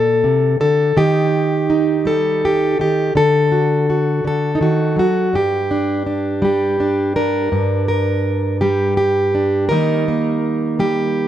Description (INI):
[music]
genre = folk, solo fingerstyle acoustic guitar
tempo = 55 BPM (dotted quarters)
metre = 6/8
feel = straight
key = G harmonic minor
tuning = A4 = 441 Hz
[part]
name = fingerpicked plugged-in steel-string acoustic guitar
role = solo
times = 0.0-11.3 s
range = G2 to D5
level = -14 LUFS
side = equal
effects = tape echo
[sound]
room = light reverb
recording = nothing above 10.4 kHz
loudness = -14 LUFS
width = side -11 dB against mid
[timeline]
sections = 0.0-7.5 A section; 7.5-11.3 B section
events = none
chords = 0.0 D; 1.0 Eb; 3.2 D; 5.3 G5; 9.7 Eb